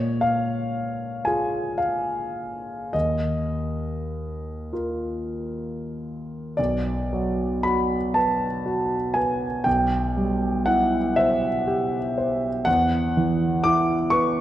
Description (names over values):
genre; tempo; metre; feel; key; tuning
classical, impressionist solo piano; 31-43 BPM (dotted quarters); 6/8; rubato; B minor from 6.6 s; A4 = 440 Hz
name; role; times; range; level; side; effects
warm concert grand piano; solo; 0.0-14.4 s; B1 to D6; -22 LUFS; equal; none
room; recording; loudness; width
wet scoring stage reverb, RT60 1.8 s; none; -22 LUFS; side -12 dB against mid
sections
0.0-6.6 A section; 6.6-14.4 B section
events
none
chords
0.0 Bb5; 2.9 Ebsus2; 6.6 Bm; 9.7 Cmaj7/B; 12.7 Esus2